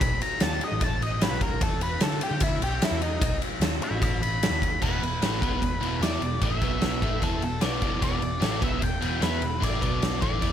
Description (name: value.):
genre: blues rock power trio and southern rock.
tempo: 150 BPM.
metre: 4/4.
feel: straight.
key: E minor.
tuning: A4 = 439 Hz.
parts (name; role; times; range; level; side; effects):
octave-fuzz lead guitar; melody; 0.0-10.5 s; D#4 to B5; -31 LUFS; left 2 dB; distortion.
vintage muted picked electric bass; bass; 0.0-10.5 s; E1 to D3; -31 LUFS; equal; none.
oversized low-tuned drum kit; drums; 0.0-10.5 s; crash cymbal, kick drum, ride cymbal, snare drum; -26 LUFS; equal; none.
biting overdriven guitar; riff; 4.8-10.5 s; E2 to E4; -30 LUFS; right 1 dB; none.
room: little or no reverb.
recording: none.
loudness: -23 LUFS.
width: side -10 dB against mid.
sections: 0.0-4.8 A section; 4.8-10.5 B section.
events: lead electric guitar solo 0.0-4.8.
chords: 0.0 B7; 1.6 E5; 3.2 B7; 4.8 E5; 6.6 B5; 7.0 E5; 9.8 B5.